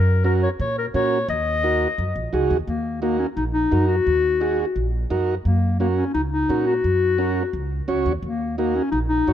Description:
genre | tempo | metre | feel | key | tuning
latin | 173 BPM | 4/4 | straight | Eb minor | A4 = 438 Hz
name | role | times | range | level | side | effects
mellow clarinet | melody | 0.0-9.3 s | Bb3 to Eb5 | -22 LUFS | left 4 dB | none
upright bass | bass | 0.0-9.3 s | Bb1 to Bb2 | -23 LUFS | equal | none
overdriven combo organ | accompaniment | 0.2-9.3 s | Db4 to Db5 | -25 LUFS | right 4 dB | none
room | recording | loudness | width
light reverb | minimal, uncompressed stereo recording | -19 LUFS | side -10 dB against mid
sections
0.0-2.7 A section; 2.7-9.3 B section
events
none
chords
0.0 Gb; 1.3 Ebm; 5.5 Gb; 8.2 Ebm

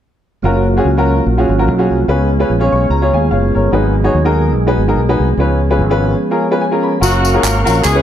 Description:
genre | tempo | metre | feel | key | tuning
uptempo gospel | 146 BPM | 4/4 | swing 56% on 8ths | F# major | A4 = 436 Hz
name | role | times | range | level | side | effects
warm upright piano | accompaniment | 0.4-8.0 s | G#2 to C#6 | -15 LUFS | left 1 dB | none
mellow tonewheel organ | sustained chords | 0.4-8.0 s | E#3 to C#6 | -18 LUFS | right 1 dB | slow rotary speaker
fingered electric bass | bass | 0.4-8.0 s | F#1 to D#2 | -14 LUFS | equal | none
mellow horn section | melody | 7.0-8.0 s | F#3 to A#4 | -16 LUFS | left 1 dB | none
tambourine and handclaps | percussion | 7.0-8.0 s | none | -20 LUFS | right 1 dB | none
room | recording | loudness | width
moderate echo chamber reverb, RT60 1.5 s, small room reverb | none | -11 LUFS | side -10 dB against mid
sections
0.4-7.0 A section; 7.0-8.0 B section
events
upright piano fill 2.5-3.7, 6.4-7.0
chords
0.4 F#maj7; 2.1 C#7; 3.7 G#m7; 5.4 C#7; 7.0 F#maj7

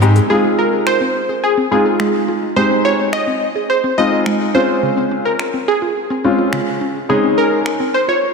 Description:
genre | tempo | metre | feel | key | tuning
dance-pop | 106 BPM | 4/4 | straight | Ab major | A4 = 439 Hz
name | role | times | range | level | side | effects
clear concert grand piano | accompaniment | 0.0-7.7 s | Ab3 to G4 | -18 LUFS | left 2 dB | none
mallet-like synth pluck | arpeggios | 0.0-8.2 s | Db3 to Ab4 | -22 LUFS | right 2 dB | chorus, ping-pong delay
smooth R&B drum kit | drums | 0.0-7.8 s | finger snaps, hi-hat, shaker | -28 LUFS | equal | none
glassy wavetable pluck | melody | 0.3-8.3 s | Ab4 to Eb5 | -16 LUFS | right 1 dB | chorus, ping-pong delay
room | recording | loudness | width
wet lush hall reverb, RT60 2.3 s | dreamy mix soaked in reverb | -13 LUFS | side -4 dB against mid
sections
0.3-8.3 A section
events
none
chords
0.3 Ab6; 4.5 Dbmaj7

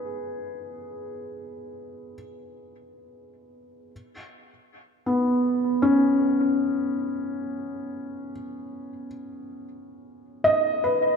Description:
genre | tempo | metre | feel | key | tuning
ambient | free time | none | none | unclear | A4 = 440 Hz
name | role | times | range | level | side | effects
felt-muted upright piano | solo | 0.0-11.2 s | B3 to D#5 | -24 LUFS | equal | analog delay
room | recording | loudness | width
wet plate reverb, RT60 2.6 s | echo-heavy mix | -22 LUFS | side -6 dB against mid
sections
0.0-11.2 A section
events
none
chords
0.0 B69

